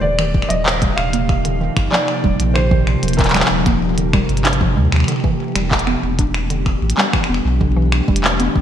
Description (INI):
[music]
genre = IDM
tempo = 95 BPM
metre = 4/4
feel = straight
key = unclear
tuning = A4 = 440 Hz
[part]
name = felt-muted upright piano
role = melody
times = 0.0-4.7 s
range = Bb4 to F5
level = -24 LUFS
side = equal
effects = digital delay
[part]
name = glassy FM pad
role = sustained chords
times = 0.0-8.6 s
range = B2 to G4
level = -22 LUFS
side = equal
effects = ensemble chorus, built-in reverb
[part]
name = mallet-like synth pluck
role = arpeggios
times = 0.0-8.5 s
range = D3 to D4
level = -23 LUFS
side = right 1 dB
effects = chorus, ping-pong delay
[part]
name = warm sub bass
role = bass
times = 0.0-8.6 s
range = Eb1 to Eb2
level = -19 LUFS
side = equal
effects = tube saturation
[part]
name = glitchy drum kit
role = drums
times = 0.2-8.5 s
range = finger snaps, handclaps, hi-hat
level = -20 LUFS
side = equal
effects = gated reverb
[part]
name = electronic kick drum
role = drums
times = 0.3-8.6 s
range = none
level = -18 LUFS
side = equal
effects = none
[sound]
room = moderate lush hall reverb, RT60 2.3 s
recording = bright 1980s-style digital production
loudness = -14 LUFS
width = side -10 dB against mid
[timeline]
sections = 0.0-8.6 A section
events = none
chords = 0.0 Ebmaj9; 5.1 Em7